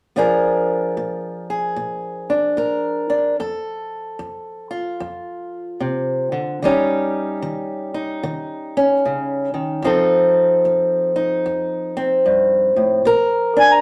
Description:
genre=acoustic country blues, solo or duo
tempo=74 BPM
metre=4/4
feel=swing 64% on 8ths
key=unclear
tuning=A4 = 441 Hz
part: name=fingerpicked old ladder-braced acoustic guitar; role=accompaniment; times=0.2-13.8 s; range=F2 to Bb4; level=-20 LUFS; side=equal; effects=none
part: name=mellow harmonica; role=melody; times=13.6-13.8 s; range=Ab5 to Bb5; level=-13 LUFS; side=equal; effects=none
room=wet studio reverb, RT60 0.6 s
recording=heard from further back in the room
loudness=-19 LUFS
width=mono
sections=0.2-13.1 A section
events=none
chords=0.2 Bb7; 3.4 F; 6.6 Eb7; 9.8 F7; 13.1 Bb

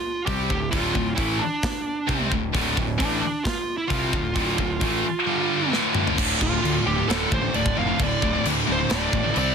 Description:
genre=heavy metal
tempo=132 BPM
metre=4/4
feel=straight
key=D minor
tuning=A4 = 440 Hz
part: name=dark smooth lead guitar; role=melody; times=0.0-9.5 s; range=D4 to F5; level=-27 LUFS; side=right 3 dB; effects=overdrive, tape echo
part: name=high-gain distorted guitar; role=riff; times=0.3-9.5 s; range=D2 to C4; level=-29 LUFS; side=right 12 dB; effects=distortion
part: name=scooped high-gain guitar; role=riff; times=0.3-9.5 s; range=D2 to C4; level=-27 LUFS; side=left 12 dB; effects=distortion
part: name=scooped high-gain guitar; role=riff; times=0.3-9.4 s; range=D2 to C4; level=-29 LUFS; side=right 2 dB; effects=distortion
part: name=fuzz picked electric bass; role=bass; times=0.3-9.5 s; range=D1 to D2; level=-29 LUFS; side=equal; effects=overdrive
part: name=tight metal drum kit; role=drums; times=0.3-9.5 s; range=crash cymbal, hi-hat, kick drum, snare drum, toms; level=-27 LUFS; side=equal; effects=none
room=light reverb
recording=dense, heavily limited modern master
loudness=-21 LUFS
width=side -6 dB against mid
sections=0.0-6.2 A section; 6.2-9.5 B section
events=drum fill 5.7-6.2; lead electric guitar solo 6.2-9.5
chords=0.0 Dm; 5.3 G5; 5.7 D5; 6.2 Dm

